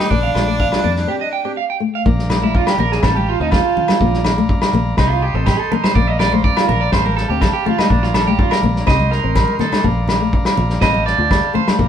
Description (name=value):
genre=highlife guitar band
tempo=123 BPM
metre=4/4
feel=straight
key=Bb major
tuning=A4 = 440 Hz
part: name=raspy tenor saxophone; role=melody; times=0.0-1.6 s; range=D4 to Eb4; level=-22 LUFS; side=left 3 dB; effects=none
part: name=electric guitar at the edge of break-up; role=arpeggios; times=0.0-11.7 s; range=D4 to G5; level=-20 LUFS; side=right 6 dB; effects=none
part: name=vintage drum kit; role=drums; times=0.0-11.9 s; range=kick drum, snare drum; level=-19 LUFS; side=equal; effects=none
part: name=nylon-string guitar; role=accompaniment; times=0.1-11.9 s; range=F3 to F4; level=-23 LUFS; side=left 7 dB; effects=none
part: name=fingered electric bass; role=bass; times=0.1-11.9 s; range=A1 to F2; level=-20 LUFS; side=equal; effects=none
part: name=congas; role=percussion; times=0.2-11.8 s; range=none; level=-25 LUFS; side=right 1 dB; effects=none
part: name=agogo bells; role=percussion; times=0.4-11.8 s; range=none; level=-22 LUFS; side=left 1 dB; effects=none
part: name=combo organ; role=sustained chords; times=2.0-11.9 s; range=D5 to C6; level=-28 LUFS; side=equal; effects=spring reverb
room=moderate stone room reverb, RT60 1.0 s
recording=band playing live in one room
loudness=-14 LUFS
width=side -9 dB against mid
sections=0.0-2.1 A section; 2.1-11.9 B section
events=break 1.1-2.1; clean electric guitar solo 2.1-11.9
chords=0.1 Bb; 1.1 Cm; 1.6 Fadd9; 2.1 Bb; 3.0 Fadd9/A; 4.0 Bb; 5.0 Cm; 5.9 Bb; 6.9 Fadd9/A; 7.9 Bb; 8.9 Cm; 9.8 Bb; 10.8 Fadd9/A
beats=| 0.11 0.59 1.08 1.57 | 2.06 2.54 3.03 3.51 | 4.00 4.49 4.97 5.46 | 5.95 6.43 6.92 7.41 | 7.89 8.38 8.87 9.35 | 9.84 10.33 10.81 11.30 | 11.79